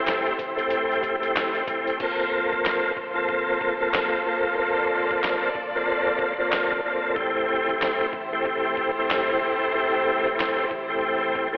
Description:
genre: hip hop, boom-bap hip-hop.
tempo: 93 BPM.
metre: 4/4.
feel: swing 62% on 16ths.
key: G dorian.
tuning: A4 = 443 Hz.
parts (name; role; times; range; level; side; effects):
tonewheel organ; accompaniment; 0.0-11.6 s; E3 to A4; -22 LUFS; equal; chorus vibrato, fast rotary speaker, cassette tape, high-pass filter, low-pass filter.
warm studio string section; sustained chords; 0.0-11.6 s; A3 to D5; -29 LUFS; equal; high-pass filter, low-pass filter.
warm sub bass; bass; 0.0-11.6 s; F1 to A1; -53 LUFS; equal; none.
trip hop sampler-style drum kit; drums; 0.1-11.5 s; crash cymbal, handclaps, hi-hat, kick drum, snare drum; -31 LUFS; equal; none.
room: wet lush hall reverb, RT60 1.9 s.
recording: dreamy mix soaked in reverb, cassette tape, telephone sound.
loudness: -21 LUFS.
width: side -23 dB against mid.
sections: 0.0-2.0 A section; 2.0-11.6 B section.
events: hi-hats muted 2.0-11.6.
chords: 0.0 Am7; 2.0 Gm11; 7.2 Am7.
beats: 0.07 0.71 1.35 | 2.00 2.65 3.29 3.94 | 4.58 5.23 5.87 6.52 | 7.16 7.81 8.45 9.10 | 9.74 10.39 11.03.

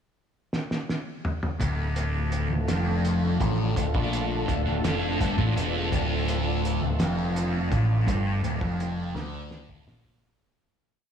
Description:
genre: psychedelic rock.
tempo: 56 BPM (dotted quarters).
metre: 6/8.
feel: straight.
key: D minor.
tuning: A4 = 440 Hz.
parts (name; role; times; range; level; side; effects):
cloth-damped thuddy drum kit; drums; 0.5-10.2 s; hi-hat, kick drum, snare drum, toms; -31 LUFS; equal; none.
soft string machine; sustained chords; 2.0-10.2 s; D3 to A4; -32 LUFS; equal; phaser, ensemble chorus.
thick fuzz guitar; riff; 1.6-10.2 s; D2 to D3; -27 LUFS; equal; distortion, phaser.
growling picked electric bass; bass; 1.6-10.2 s; D1 to D2; -29 LUFS; equal; overdrive.
room: moderate huge ambient reverb, RT60 7.1 s.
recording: dreamy mix soaked in reverb.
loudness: -24 LUFS.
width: side -8 dB against mid.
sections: 0.0-1.6 pickup bar; 1.6-10.2 riff.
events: drum fill 0.5-1.6, 9.2-10.2; fade-out 8.1-10.2.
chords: 0.0 N.C.; 1.6 Dm.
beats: 0.52 | 1.60 2.68 | 3.76 4.84 | 5.92 7.00 | 8.07 9.15.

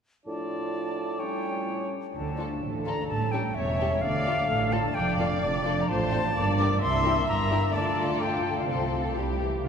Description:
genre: quick classical-period movement for symphony orchestra.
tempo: 128 BPM.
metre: 2/4.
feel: straight.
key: D minor.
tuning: A4 = 440 Hz.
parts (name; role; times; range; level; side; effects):
bright concert flute; second line; 0.3-9.2 s; D5 to D6; -30 LUFS; left 2 dB; none.
warm clarinet; second line; 0.3-1.9 s; E4 to F4; -40 LUFS; right 5 dB; none.
warm cor anglais; second line; 0.3-1.9 s; C#5 to D5; -39 LUFS; right 2 dB; none.
dark bassoon; accompaniment; 0.3-1.9 s; A2; -38 LUFS; equal; none.
warm French horn section; sustained chords; 0.3-9.6 s; E3 to F4; -34 LUFS; left 1 dB; none.
rich studio cello section; bass; 2.1-9.7 s; D2 to D3; -32 LUFS; right 2 dB; none.
warm studio double bass section; bass; 2.1-9.7 s; E1 to D2; -31 LUFS; right 2 dB; none.
warm studio violin section; melody; 2.4-9.4 s; G4 to Bb4; -38 LUFS; left 5 dB; none.
dark studio violin section; second line; 2.4-9.4 s; C4 to G4; -36 LUFS; left 4 dB; none.
warm studio viola section; accompaniment; 2.6-9.7 s; F4 to E5; -32 LUFS; right 1 dB; none.
room: wet cathedral reverb, RT60 5.4 s.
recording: recorded in a church or concert hall.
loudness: -24 LUFS.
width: side -7 dB against mid.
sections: 0.3-2.1 A section; 2.1-9.7 B section.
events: none.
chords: 0.3 Dm/A; 1.2 A7; 2.1 Dm; 3.1 A7; 4.0 Dm; 5.0 Dm/F; 5.9 F/A; 6.4 Gm; 6.8 C7; 7.7 Dm; 8.7 F/C; 9.2 C.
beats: | 0.26 0.73 | 1.20 1.67 | 2.15 2.62 | 3.09 3.56 | 4.02 4.49 | 4.95 5.42 | 5.89 6.35 | 6.82 7.28 | 7.75 8.22 | 8.69 9.17 | 9.65.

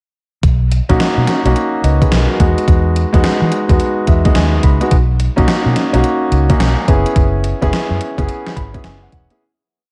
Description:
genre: R&B, new jack swing.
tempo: 107 BPM.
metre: 4/4.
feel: swing 64% on 16ths.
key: B major.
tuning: A4 = 439 Hz.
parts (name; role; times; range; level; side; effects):
vintage muted fingered electric bass; bass; 0.4-9.3 s; E1 to E3; -17 LUFS; equal; none.
gated 80s digital drum machine; drums; 0.4-9.4 s; hi-hat, kick drum, snare drum; -18 LUFS; equal; gated reverb, gated reverb snare, overdrive.
clear concert grand piano; accompaniment; 0.9-9.4 s; G#3 to B5; -19 LUFS; equal; none.
room: little or no reverb.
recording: none.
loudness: -14 LUFS.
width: mono.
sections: 0.4-9.4 verse.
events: grand piano fill 3.8-4.9, 8.3-9.4; fade-out 7.2-9.4.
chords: 0.4 Bmaj9; 2.4 Emaj7; 4.9 Bmaj9; 6.9 F#7sus4.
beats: | 0.43 0.99 1.55 2.11 | 2.67 3.24 3.80 4.36 | 4.92 5.48 6.04 6.60 | 7.16 7.72 8.28 8.84.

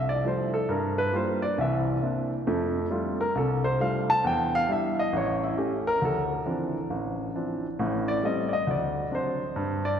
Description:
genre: solo jazz.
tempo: 135 BPM.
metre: 4/4.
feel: swing 65% on 8ths.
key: F major, D minor from 6.0 s.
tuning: A4 = 440 Hz.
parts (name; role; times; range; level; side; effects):
warm baby grand piano; solo; 0.0-10.0 s; A1 to A5; -25 LUFS; equal; none.
room: wet church reverb, RT60 3.0 s.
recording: recorded in a church or concert hall.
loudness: -25 LUFS.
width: side -8 dB against mid.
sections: 0.0-6.0 A section; 6.0-10.0 A section.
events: grand piano solo 0.0-10.0.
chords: 0.0 Fmaj13; 0.7 Gm7; 1.6 C9; 2.5 F69; 4.2 Em7; 5.1 A7; 6.0 Dm9; 7.8 Am7b5; 8.7 D7.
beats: 0.24 | 0.68 1.13 1.57 2.02 | 2.46 2.90 3.35 3.79 | 4.23 4.68 5.12 5.56 | 6.01 6.45 6.89 7.34 | 7.78 8.22 8.67 9.11 | 9.55.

